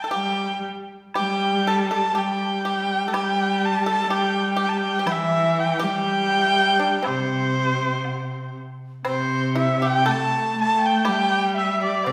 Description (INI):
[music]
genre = chinese traditional, Chinese chamber ensemble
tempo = 60 BPM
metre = 2/4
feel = rubato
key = unclear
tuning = A4 = 440 Hz
[part]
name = rich erhu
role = melody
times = 0.0-12.1 s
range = C5 to A5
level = -25 LUFS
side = equal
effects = none
[part]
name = pipa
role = second line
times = 0.0-12.1 s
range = C4 to A4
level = -31 LUFS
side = equal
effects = none
[part]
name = clear cello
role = second line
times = 0.1-12.1 s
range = C3 to A3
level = -27 LUFS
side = equal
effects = none
[part]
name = woodblock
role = percussion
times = 0.1-12.1 s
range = none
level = -37 LUFS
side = equal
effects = none
[part]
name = large dizi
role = second line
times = 9.1-12.1 s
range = C5 to A5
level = -30 LUFS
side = equal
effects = none
[sound]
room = wet recital hall reverb, RT60 1.5 s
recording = recorded in a church or concert hall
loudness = -22 LUFS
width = mono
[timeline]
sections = 0.0-9.1 A section; 9.1-12.1 B section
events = none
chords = none